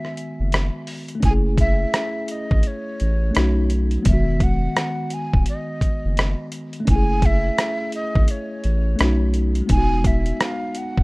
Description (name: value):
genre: lo-fi hip hop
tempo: 85 BPM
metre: 4/4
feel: swing 61% on 16ths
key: unclear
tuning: A4 = 440 Hz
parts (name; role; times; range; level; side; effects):
- breathy mellow silver concert flute; melody; 0.0-11.0 s; C#5 to G#5; -28 LUFS; right 1 dB; low-pass filter
- mellow tine electric piano; accompaniment; 0.0-11.0 s; D#3 to G#4; -26 LUFS; left 1 dB; medium stereo tremolo, cassette tape, low-pass filter
- dusty soul sampler-style drum kit; drums; 0.0-11.0 s; hi-hat, kick drum, rim click; -20 LUFS; equal; none
- soft dub sub bass; bass; 0.4-11.0 s; D#1 to B1; -20 LUFS; equal; none
room: digital ambience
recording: rough home demo mix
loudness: -18 LUFS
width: side -24 dB against mid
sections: 0.0-11.0 A section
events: break 0.0-1.2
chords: 0.0 Emaj9; 1.2 F#m9; 3.3 B7; 4.1 Emaj9; 6.9 F#m9; 9.0 B7; 9.7 Emaj9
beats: 0.52 | 1.23 1.94 2.64 3.35 | 4.05 4.76 5.46 6.17 | 6.88 7.58 8.29 8.99 | 9.70 10.41